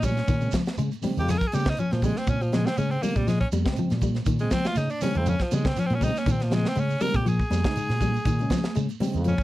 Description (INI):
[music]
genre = afrobeat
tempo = 120 BPM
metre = 4/4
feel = swing 54% on 16ths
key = Bb dorian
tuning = A4 = 441 Hz
[part]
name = raspy tenor saxophone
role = melody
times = 0.0-9.4 s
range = F3 to Bb4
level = -30 LUFS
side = equal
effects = none
[part]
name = clean electric guitar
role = arpeggios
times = 0.0-9.4 s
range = Eb3 to Ab3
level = -29 LUFS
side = left 3 dB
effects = none
[part]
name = fingered electric bass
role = bass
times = 0.0-9.3 s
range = F2 to Db3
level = -26 LUFS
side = equal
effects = none
[part]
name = tight funk drum kit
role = drums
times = 0.0-9.4 s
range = hi-hat, kick drum, snare drum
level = -28 LUFS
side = equal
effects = none
[part]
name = congas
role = percussion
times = 0.0-9.4 s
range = none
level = -33 LUFS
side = right 2 dB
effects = none
[part]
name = shekere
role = percussion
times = 0.0-9.4 s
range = none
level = -37 LUFS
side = right 4 dB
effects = none
[part]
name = mellow tine electric piano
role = accompaniment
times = 0.4-9.3 s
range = Db3 to Eb4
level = -32 LUFS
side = right 1 dB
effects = medium stereo tremolo
[sound]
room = light reverb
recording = dry, close 1970s-style studio recording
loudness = -22 LUFS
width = side -16 dB against mid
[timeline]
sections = 0.0-9.4 A section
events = tenor saxophone solo 0.0-9.4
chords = 0.0 Bbm7